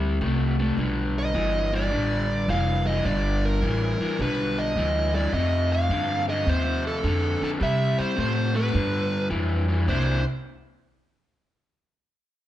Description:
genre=electric blues shuffle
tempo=106 BPM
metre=4/4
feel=swing 67% on 8ths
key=unclear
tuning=A4 = 440 Hz
part: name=raw garage guitar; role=riff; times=0.0-10.2 s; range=F2 to E4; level=-26 LUFS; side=left 3 dB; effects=overdrive, spring reverb
part: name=upright bass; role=bass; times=0.0-10.2 s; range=F1 to C3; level=-25 LUFS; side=right 1 dB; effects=none
part: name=dark smooth lead guitar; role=melody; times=1.2-10.2 s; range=A4 to F5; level=-27 LUFS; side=right 2 dB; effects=overdrive
room=moderate large studio reverb, RT60 1.2 s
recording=band playing live in one room, nothing above 10.8 kHz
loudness=-22 LUFS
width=side -13 dB against mid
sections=0.0-9.9 A section; 9.9-12.2 B section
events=none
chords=0.0 Csus2; 0.8 G9; 5.3 F9; 7.6 C5; 8.7 G7; 9.9 C9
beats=0.21 | 0.78 1.35 1.92 2.48 | 3.05 3.62 4.19 4.76 | 5.33 5.90 6.46 7.03 | 7.60 8.17 8.74 9.31 | 9.88

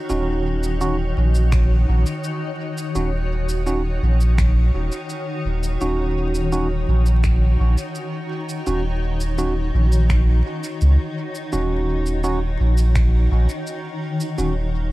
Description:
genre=ambient dub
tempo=84 BPM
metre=4/4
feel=straight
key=Eb minor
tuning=A4 = 439 Hz
part: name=granular cloud pad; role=sustained chords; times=0.0-14.9 s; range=Eb3 to Db5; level=-27 LUFS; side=left 2 dB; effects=built-in reverb
part: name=tine electric piano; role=stabs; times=0.1-14.5 s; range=Db4 to Gb4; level=-28 LUFS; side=right 2 dB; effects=dub echo
part: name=warm sub bass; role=bass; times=0.1-14.9 s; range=Eb1 to Db2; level=-18 LUFS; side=equal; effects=none
part: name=electronic shaker and finger snaps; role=drums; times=0.1-14.5 s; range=none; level=-36 LUFS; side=equal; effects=studio reverb, dub echo
part: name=electronic kick drum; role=drums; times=1.5-13.1 s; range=none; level=-23 LUFS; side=equal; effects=none
room=little or no reverb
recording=vinyl crackle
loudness=-18 LUFS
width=side -18 dB against mid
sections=0.0-14.9 A section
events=none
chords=0.0 Ebm7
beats=| 0.10 0.81 1.52 2.24 | 2.95 3.67 4.38 5.10 | 5.81 6.53 7.24 7.95 | 8.67 9.38 10.10 10.81 | 11.53 12.24 12.95 13.67 | 14.38

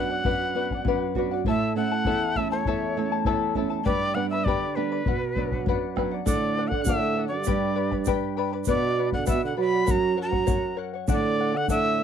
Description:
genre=andean folk, Andean ensemble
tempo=100 BPM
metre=2/4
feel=straight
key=B minor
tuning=A4 = 438 Hz
part: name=bright quena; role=melody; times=0.0-12.0 s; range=B4 to B5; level=-28 LUFS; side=equal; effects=none
part: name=charango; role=accompaniment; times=0.0-12.0 s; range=E4 to B5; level=-29 LUFS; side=left 12 dB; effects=none
part: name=flamenco guitar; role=accompaniment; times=0.0-12.0 s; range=E2 to F#4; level=-29 LUFS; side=right 9 dB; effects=none
part: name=bombo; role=percussion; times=0.2-11.8 s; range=none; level=-28 LUFS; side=left 2 dB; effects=none
part: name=warm French horn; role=second line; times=6.3-12.0 s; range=G2 to F#3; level=-27 LUFS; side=right 5 dB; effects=none
part: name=egg shaker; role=percussion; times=6.3-11.8 s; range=none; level=-38 LUFS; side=right 15 dB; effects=none
room=light reverb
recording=dry, close 1970s-style studio recording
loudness=-23 LUFS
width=side -8 dB against mid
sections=0.0-6.3 A section; 6.3-12.0 B section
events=none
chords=0.0 Bm; 1.5 A; 3.9 G; 5.1 Bm; 6.3 D; 7.5 G; 8.7 Bm; 9.9 F#; 11.1 D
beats=| 0.26 0.86 | 1.46 2.06 | 2.66 3.26 | 3.86 4.46 | 5.07 5.67 | 6.27 6.87 | 7.47 8.07 | 8.67 9.28 | 9.88 10.48 | 11.08 11.69

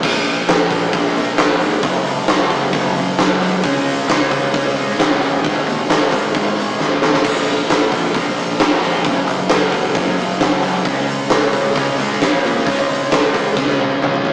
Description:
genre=rock, shoegaze and dream pop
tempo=133 BPM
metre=4/4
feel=straight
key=Db major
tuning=A4 = 439 Hz
part: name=fuzz guitar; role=riff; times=0.0-14.3 s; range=Gb2 to Db4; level=-18 LUFS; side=equal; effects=distortion
part: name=fuzz picked electric bass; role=bass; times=0.0-14.3 s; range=Gb1 to Bb2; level=-23 LUFS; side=equal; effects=overdrive
part: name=huge arena drum kit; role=drums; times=0.0-14.3 s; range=crash cymbal, hi-hat, kick drum, snare drum, toms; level=-16 LUFS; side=equal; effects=none
room=moderate stone room reverb, RT60 1.1 s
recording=rough rehearsal-room recording, small speaker sound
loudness=-13 LUFS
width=side -26 dB against mid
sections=0.0-14.3 A section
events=drum fill 6.8-7.2, 13.6-14.3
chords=0.0 Bb5; 1.8 Gb5; 3.6 Db5; 5.4 Ab5; 7.2 Bb5; 9.0 Gb5; 10.9 Db5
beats=| 0.04 0.49 0.94 1.39 | 1.84 2.29 2.74 3.19 | 3.64 4.09 4.54 4.99 | 5.44 5.89 6.34 6.79 | 7.25 7.70 8.15 8.60 | 9.05 9.50 9.95 10.40 | 10.85 11.31 11.76 12.21 | 12.66 13.12 13.57 14.02

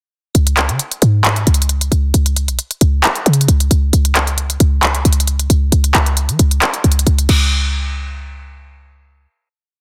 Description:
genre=hip hop, trap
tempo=134 BPM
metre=4/4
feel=half-time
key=unclear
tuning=A4 = 440 Hz
part: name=short 808-style bass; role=bass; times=0.3-9.3 s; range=B1 to E3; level=-16 LUFS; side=equal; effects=none
part: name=trap drum kit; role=drums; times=0.3-7.4 s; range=crash cymbal, handclaps, hi-hat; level=-18 LUFS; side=equal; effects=none
room=digital ambience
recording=dense, heavily limited modern master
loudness=-15 LUFS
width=mono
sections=0.3-7.5 hook; 7.5-9.8 final hit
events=none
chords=none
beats=| 0.35 0.80 1.24 1.69 | 2.14 2.59 3.04 3.48 | 3.93 4.38 4.83 5.27 | 5.72 6.17 6.62 7.07 | 7.51 7.96 8.41 8.86

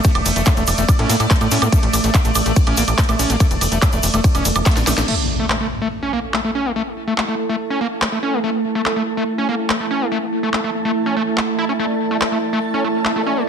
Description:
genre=psychedelic trance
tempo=143 BPM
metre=4/4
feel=straight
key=A major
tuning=A4 = 444 Hz
part: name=bubbling stepped-filter texture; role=sustained chords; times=0.0-13.5 s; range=A3 to D5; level=-23 LUFS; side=right 3 dB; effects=chorus, built-in reverb, sidechain pumping
part: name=screaming distorted acid line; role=riff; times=0.0-13.4 s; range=A3 to E4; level=-22 LUFS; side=left 1 dB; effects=distortion, chorus, auto-pan, sidechain pumping, tape echo
part: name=drum and bass drum kit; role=drums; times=0.0-13.1 s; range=crash cymbal, handclaps, hi-hat, ride cymbal, snare drum, woodblock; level=-21 LUFS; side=right 1 dB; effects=studio reverb
part: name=electronic kick drum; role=drums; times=0.0-4.7 s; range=none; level=-15 LUFS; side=equal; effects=overdrive, studio reverb
part: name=tube shaker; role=percussion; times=0.0-5.1 s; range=none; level=-27 LUFS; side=left 5 dB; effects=none
part: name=tight sequencer bass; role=bass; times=0.2-5.0 s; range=E1 to A2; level=-20 LUFS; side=left 1 dB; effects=none
part: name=vowel-sweep wobble bass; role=second line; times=0.5-3.9, 13.2-13.3 s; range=A3 to C#4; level=-35 LUFS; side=right 4 dB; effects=none
part: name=impact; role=sound effects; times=5.1-6.8 s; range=none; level=-25 LUFS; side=left 1 dB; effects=none
part: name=granular cloud pad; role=texture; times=6.2-13.5 s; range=E4 to A5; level=-25 LUFS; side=right 2 dB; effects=built-in reverb, sidechain pumping
room=light reverb, digital ambience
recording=dense, heavily limited modern master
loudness=-16 LUFS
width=side -7 dB against mid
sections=0.0-5.1 A section; 5.1-13.5 B section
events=drop 0.0-5.1; drum fill 4.7-5.1; band accent 5.0; impact 5.1-6.8; filter sweep on synth texture 5.1-13.5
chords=0.0 A5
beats=| 0.05 0.47 0.89 1.30 | 1.73 2.14 2.56 2.98 | 3.40 3.82 4.24 4.66 | 5.08 5.50 5.92 6.34 | 6.76 7.18 7.60 8.02 | 8.44 8.86 9.28 9.70 | 10.12 10.54 10.96 11.38 | 11.79 12.21 12.63 13.05 | 13.47

